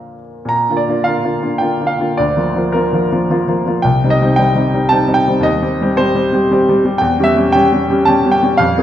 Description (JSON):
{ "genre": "classical, romantic character piece for solo piano", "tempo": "91-119 BPM", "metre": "3/4", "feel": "rubato", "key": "Bb major", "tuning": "A4 = 440 Hz", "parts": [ { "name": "clear grand piano", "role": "solo", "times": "0.0-8.8 s", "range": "C2 to Bb5", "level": "-12 LUFS", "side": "equal", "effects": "none" } ], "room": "wet recital hall reverb, RT60 1.4 s", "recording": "dark, warm production", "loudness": "-12 LUFS", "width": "side -11 dB against mid", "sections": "0.5-8.8 A section", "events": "none", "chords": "0.5 Bb; 2.2 Bb/D; 3.9 Cm; 5.4 Cm/Eb; 7.0 C#dim/E", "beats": "| 0.50 1.06 1.61 | 2.18 2.75 3.31 | 3.85 4.38 4.91 | 5.45 5.99 6.51 | 7.02 7.54 8.07 | 8.60" }